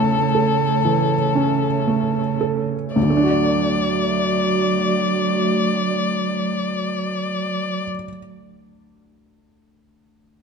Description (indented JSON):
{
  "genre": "neoclassical piano and strings",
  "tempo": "56 BPM",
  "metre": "4/4",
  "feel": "rubato",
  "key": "D major",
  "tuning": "A4 = 441 Hz",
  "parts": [
    { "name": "warm violin", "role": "melody", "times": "0.0-7.8 s", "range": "A4 to D5", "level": "-23 LUFS", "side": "left 8 dB", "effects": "none" },
    { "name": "rich cello", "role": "second line", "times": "0.0-7.8 s", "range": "C#3 to F#3", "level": "-24 LUFS", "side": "right 10 dB", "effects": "none" },
    { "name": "felt-muted upright piano", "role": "accompaniment", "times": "0.0-10.4 s", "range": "D2 to D5", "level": "-22 LUFS", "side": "right 2 dB", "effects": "none" },
    { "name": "warbly tape-like pad", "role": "sustained chords", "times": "0.0-7.8 s", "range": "A3 to D5", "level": "-26 LUFS", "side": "left 1 dB", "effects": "chorus, built-in reverb" }
  ],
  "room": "light reverb",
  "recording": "close, detailed microphones",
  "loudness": "-18 LUFS",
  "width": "side -5 dB against mid",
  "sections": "0.0-3.0 A section; 3.0-7.3 B section",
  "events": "slowing down 0.0-3.0",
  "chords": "0.0 A/E; 3.0 D",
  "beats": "0.83 1.87 | 2.96 4.04 5.11 6.18"
}